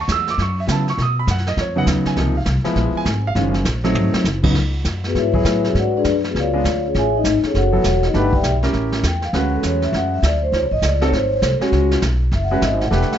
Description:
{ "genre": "jazz, small-group swing and bop", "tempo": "201 BPM", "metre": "4/4", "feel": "swing 63% on 8ths", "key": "C# minor", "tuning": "A4 = 440 Hz", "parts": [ { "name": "warm concert grand piano", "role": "accompaniment", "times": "0.0-13.2 s", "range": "B#2 to E6", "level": "-21 LUFS", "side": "right 2 dB", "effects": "none" }, { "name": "upright bass", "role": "bass", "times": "0.0-13.1 s", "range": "E1 to C#3", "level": "-20 LUFS", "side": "equal", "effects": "none" }, { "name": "vintage brush drum kit", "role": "drums", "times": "0.1-13.2 s", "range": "brushed snare drum, crash cymbal, hi-hat, kick drum, snare drum, toms", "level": "-24 LUFS", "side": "equal", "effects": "none" }, { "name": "vibraphone with soft mallets", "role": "melody", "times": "5.1-13.2 s", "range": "B3 to B5", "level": "-19 LUFS", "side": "left 2 dB", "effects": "plate reverb" } ], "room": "light reverb", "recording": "nothing above 7.7 kHz", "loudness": "-16 LUFS", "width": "side -10 dB against mid", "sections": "0.0-4.6 A section; 4.6-13.2 A section", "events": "drum fill 4.0; vibraphone solo 4.6-13.2", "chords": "0.0 Dmaj9 (rootless); 1.0 Badd9; 2.2 C#maj9; 2.8 A#5; 3.4 D#m7; 4.0 G#7b9; 4.6 C#m7; 5.7 G#m7b5; 6.3 C#7b9; 6.9 F#m9; 8.1 Em11; 8.7 A7b9; 9.3 Dmaj9; 10.5 D#m7b5; 11.1 G#7; 11.7 C#7sus4", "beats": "0.08 0.38 0.67 | 0.97 1.27 1.57 1.87 | 2.17 2.46 2.76 3.06 | 3.36 3.66 3.96 4.25 | 4.55 4.85 5.15 5.45 | 5.75 6.05 6.35 6.64 | 6.94 7.24 7.54 7.84 | 8.14 8.44 8.73 9.03 | 9.33 9.63 9.93 10.23 | 10.53 10.83 11.12 11.42 | 11.72 12.02 12.32 12.62 | 12.91" }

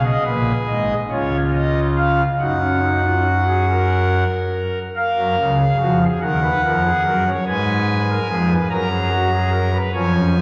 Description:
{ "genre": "classical, baroque-style 3-part fugue for pipe organ", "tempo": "48 BPM (dotted quarters)", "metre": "6/8", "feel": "straight", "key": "F# major", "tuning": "A4 = 439 Hz", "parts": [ { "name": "pipe organ, foundations", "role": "solo", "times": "0.0-10.4 s", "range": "G#1 to A#5", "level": "-18 LUFS", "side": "equal", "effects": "none" } ], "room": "wet church reverb, RT60 3.0 s", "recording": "none", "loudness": "-19 LUFS", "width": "mono", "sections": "0.0-5.0 A section; 5.0-10.4 B section", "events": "none", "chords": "0.0 G#m; 1.1 C#; 2.4 F#; 6.2 D#m; 7.5 G#m; 8.7 F#", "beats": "1.11 | 2.39 3.68 | 4.96 6.22 | 7.47 8.71 | 9.95" }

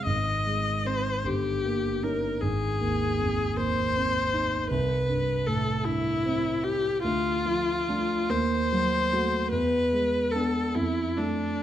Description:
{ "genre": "classical, romantic duo for viola and grand piano", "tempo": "46-53 BPM (dotted quarters)", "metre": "6/8", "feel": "rubato", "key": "unclear", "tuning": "A4 = 439 Hz", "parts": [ { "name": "rich viola", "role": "melody", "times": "0.0-11.6 s", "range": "D4 to Eb5", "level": "-27 LUFS", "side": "left 2 dB", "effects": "none" }, { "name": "dark concert grand piano", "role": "accompaniment", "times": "0.0-11.6 s", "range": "G1 to F#4", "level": "-28 LUFS", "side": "right 2 dB", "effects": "none" } ], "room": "moderate recital hall reverb, RT60 1.5 s", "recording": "none", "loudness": "-24 LUFS", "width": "side -11 dB against mid", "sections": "0.0-11.6 A section", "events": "none", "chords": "0.1 Ab; 1.2 Eb7/G; 2.4 Ab; 4.7 C; 7.0 Dm; 8.3 D#dim7; 9.5 E7; 10.7 F6", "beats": "| 0.07 1.25 | 2.42 3.57 | 4.71 5.86 | 7.03 8.30 | 9.51 10.75" }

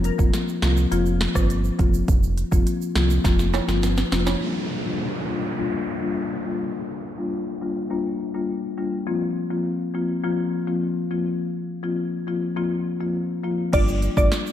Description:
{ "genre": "dancehall", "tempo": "103 BPM", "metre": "4/4", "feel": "straight", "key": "G minor", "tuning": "A4 = 441 Hz", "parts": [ { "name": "marimba with soft mallets", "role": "accompaniment", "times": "0.0-14.4 s", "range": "F3 to F4", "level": "-24 LUFS", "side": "left 3 dB", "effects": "low-pass filter" }, { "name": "round analog bass", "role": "bass", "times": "0.0-4.4, 13.7-14.3 s", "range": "F1 to C2", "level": "-23 LUFS", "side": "right 1 dB", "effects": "none" }, { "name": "afro-pop drum kit", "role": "drums", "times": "0.0-4.4, 13.7-14.5 s", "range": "crash cymbal, hi-hat, kick drum, rim click, snare drum", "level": "-22 LUFS", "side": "right 1 dB", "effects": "none" }, { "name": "egg shaker and timbales", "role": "percussion", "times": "0.0-4.4, 13.7-14.5 s", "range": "none", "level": "-34 LUFS", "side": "right 12 dB", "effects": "none" }, { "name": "downlifter", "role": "sound effects", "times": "4.4-9.1 s", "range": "none", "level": "-32 LUFS", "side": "right 1 dB", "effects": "none" }, { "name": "glassy wavetable pluck", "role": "melody", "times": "13.7-14.3 s", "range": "D5", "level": "-27 LUFS", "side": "left 1 dB", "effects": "chorus, ping-pong delay" } ], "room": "light reverb", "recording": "none", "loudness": "-21 LUFS", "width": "side -11 dB against mid", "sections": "0.0-4.4 A section; 4.4-13.7 B section", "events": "drum fill 3.2-4.4; filter sweep on marimba 4.4-13.7", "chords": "0.0 Fsus4; 4.4 Gm7; 9.1 Fsus4; 13.7 Gm7", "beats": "0.34 0.92 1.50 | 2.08 2.67 3.25 3.83 | 4.41 5.00 5.58 6.16 | 6.74 7.33 7.91 8.49 | 9.07 9.66 10.24 10.82 | 11.40 11.99 12.57 13.15 | 13.73 14.32" }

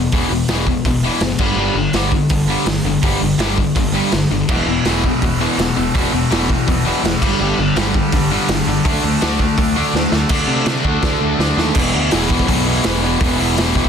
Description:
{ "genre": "punk rock", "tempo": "165 BPM", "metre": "4/4", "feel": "straight", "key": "E minor", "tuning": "A4 = 440 Hz", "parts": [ { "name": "overdriven electric guitar", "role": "riff", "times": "0.0-13.9 s", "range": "E2 to D4", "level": "-21 LUFS", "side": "right 12 dB", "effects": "none" }, { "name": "tight distorted guitar", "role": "riff", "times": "0.0-13.9 s", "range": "E2 to D4", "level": "-19 LUFS", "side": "left 11 dB", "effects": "distortion" }, { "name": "fuzz picked electric bass", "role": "bass", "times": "0.0-13.9 s", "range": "E1 to C3", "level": "-22 LUFS", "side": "equal", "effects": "overdrive" }, { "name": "raw garage drum kit", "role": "drums", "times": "0.1-13.9 s", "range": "crash cymbal, hi-hat, kick drum, snare drum", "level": "-19 LUFS", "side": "equal", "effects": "none" }, { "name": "tight distorted guitar", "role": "riff", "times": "4.5-11.8 s", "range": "E2 to D4", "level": "-22 LUFS", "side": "right 1 dB", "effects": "distortion" } ], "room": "light reverb", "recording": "dense, heavily limited modern master", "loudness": "-14 LUFS", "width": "side -7 dB against mid", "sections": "0.0-10.3 A section; 10.3-11.8 B section; 11.8-13.9 C section", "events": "drum fill 9.9-10.3, 11.0-11.8", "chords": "0.0 E5; 1.4 G5; 4.5 E5; 7.2 G5; 8.9 D5; 11.8 E5", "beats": "| 0.13 0.49 0.85 1.22 | 1.58 1.94 2.31 2.67 | 3.03 3.40 3.76 4.12 | 4.49 4.85 5.21 5.58 | 5.94 6.30 6.67 7.03 | 7.40 7.76 8.12 8.49 | 8.85 9.21 9.58 9.94 | 10.30 10.67 11.03 11.39 | 11.76 12.12 12.48 12.84 | 13.21 13.57" }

